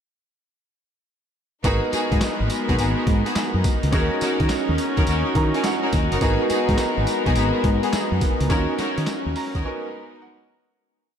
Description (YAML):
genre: R&B, new jack swing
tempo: 105 BPM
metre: 4/4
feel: swing 66% on 16ths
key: G# minor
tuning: A4 = 440 Hz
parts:
  - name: clear concert grand piano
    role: accompaniment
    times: 1.6-10.8 s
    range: B3 to A#5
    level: -26 LUFS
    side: right 2 dB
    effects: none
  - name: warm studio string section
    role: sustained chords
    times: 1.6-10.8 s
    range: G#3 to A#4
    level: -27 LUFS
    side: left 1 dB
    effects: none
  - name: clear studio string section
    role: stabs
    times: 1.6-9.6 s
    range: B3 to A#4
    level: -27 LUFS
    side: left 1 dB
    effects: ping-pong delay
  - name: mellow fretless electric bass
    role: bass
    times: 1.6-9.6 s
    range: F#1 to D#3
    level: -23 LUFS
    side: equal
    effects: none
  - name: boom bap sampler-style drum kit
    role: drums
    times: 1.6-9.6 s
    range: handclaps, hi-hat, kick drum, snare drum, tambourine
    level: -25 LUFS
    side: equal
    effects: overdrive
room: wet huge ambient reverb, RT60 8.6 s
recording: dreamy mix soaked in reverb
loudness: -19 LUFS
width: side -8 dB against mid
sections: 1.6-10.8 chorus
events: grand piano fill 5.1-6.2, 9.1-10.8; fade-out 8.5-10.8; break 9.6-10.8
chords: 1.6 G#m7; 3.9 D#m7; 6.2 G#m7; 8.5 D#m7; 9.6 G#m7